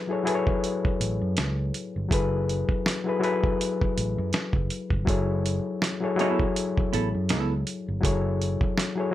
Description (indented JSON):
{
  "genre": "R&B, neo-soul",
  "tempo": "81 BPM",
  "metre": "4/4",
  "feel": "swing 57% on 16ths",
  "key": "F# minor",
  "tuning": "A4 = 440 Hz",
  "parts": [
    { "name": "overdriven reed electric piano", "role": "accompaniment", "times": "0.0-9.1 s", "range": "F#3 to C#5", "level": "-27 LUFS", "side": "left 3 dB", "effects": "none" },
    { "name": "dusty soul sampler-style drum kit", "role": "drums", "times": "0.3-9.0 s", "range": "hi-hat, kick drum, snare drum", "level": "-27 LUFS", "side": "right 1 dB", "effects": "none" },
    { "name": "fingered electric bass", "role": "bass", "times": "1.0-8.5 s", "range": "F#1 to F#2", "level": "-28 LUFS", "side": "right 1 dB", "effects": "none" },
    { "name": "vintage hollow-body jazz guitar", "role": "second line", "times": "5.8-8.8 s", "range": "B3 to A4", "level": "-29 LUFS", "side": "right 6 dB", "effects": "none" }
  ],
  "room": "light reverb",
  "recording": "none",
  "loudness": "-24 LUFS",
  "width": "side -13 dB against mid",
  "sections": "0.0-9.1 A section",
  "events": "none",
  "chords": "0.0 F#m11"
}